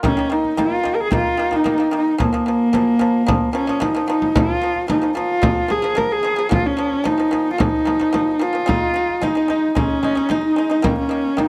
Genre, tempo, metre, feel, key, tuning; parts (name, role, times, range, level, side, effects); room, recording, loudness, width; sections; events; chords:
mongolian traditional, Mongolian folk; 111 BPM; 4/4; straight; Bb yu mode; A4 = 444 Hz
dark horsehead fiddle; melody; 0.0-11.5 s; Bb3 to Bb4; -20 LUFS; equal
pipa; arpeggios; 0.0-11.5 s; Bb2 to Eb4; -26 LUFS; equal
frame drum; percussion; 0.0-11.5 s; -24 LUFS; equal
wet studio ambience, RT60 0.5 s; -19 LUFS; mono
0.0-4.3 A section; 4.3-11.5 B section
0.0 Eb5; 2.2 Bb5; 8.7 Ab5; 10.8 Eb5